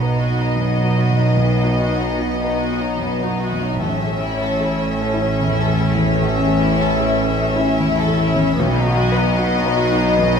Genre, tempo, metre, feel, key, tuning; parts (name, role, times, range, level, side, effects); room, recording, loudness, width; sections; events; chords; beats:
cinematic; 75 BPM; 3/4; rubato; A4 = 435 Hz
warm symphonic violin section; melody; 0.0-10.4 s; D#5 to E5; -25 LUFS; left 4 dB
warm symphonic violin section; second line; 0.0-10.4 s; A3 to A4; -24 LUFS; left 2 dB
rich studio viola section; accompaniment; 0.0-10.4 s; B3 to C#4; -27 LUFS; right 1 dB
warm grand piano; accompaniment; 0.0-10.4 s; A1 to C#5; -23 LUFS; left 2 dB
mellow French horn section; sustained chords; 0.0-10.4 s; E3 to D#4; -24 LUFS; left 4 dB
warm symphonic cello section; bass; 0.0-10.4 s; A2 to B2; -23 LUFS; right 3 dB
warm symphonic double bass section; bass; 0.0-10.4 s; A1 to B1; -23 LUFS; right 3 dB
wet recital hall reverb, RT60 1.7 s; recorded in a church or concert hall; -16 LUFS; side -6 dB against mid
0.0-10.4 A section
0.0 B; 3.8 A; 8.6 B
0.56 | 1.37 2.19 3.00 | 3.80 4.60 5.41 | 6.20 7.00 7.80 | 8.58 9.37 10.16